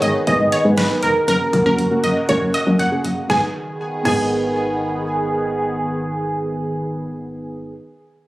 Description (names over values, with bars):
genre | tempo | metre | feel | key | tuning
synth-pop | 119 BPM | 4/4 | straight | G# minor | A4 = 440 Hz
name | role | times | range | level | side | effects
funky polysynth comp | melody | 0.0-7.7 s | G#4 to D#5 | -22 LUFS | right 1 dB | chorus, ping-pong delay
wide unison pluck | second line | 0.0-4.8 s | A#4 to G#5 | -23 LUFS | equal | ping-pong delay
muted felt-like synth keys | accompaniment | 0.0-7.8 s | A#3 to B4 | -23 LUFS | equal | chorus
phased analog pad | sustained chords | 0.0-7.0 s | C#3 to G#4 | -25 LUFS | right 1 dB | phaser, chorus
solid FM bass | bass | 0.0-7.7 s | E1 to G#2 | -24 LUFS | equal | none
pop drum kit | drums | 0.0-4.2 s | crash cymbal, hi-hat, kick drum, snare drum | -26 LUFS | equal | none
room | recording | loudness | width
moderate plate reverb, RT60 1.2 s, digital ambience | recorded on a phone in the room, studio ambience | -16 LUFS | side -17 dB against mid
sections
0.0-3.3 A section; 3.3-7.3 B section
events
none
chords
0.0 G#m; 1.3 F#; 3.3 G#m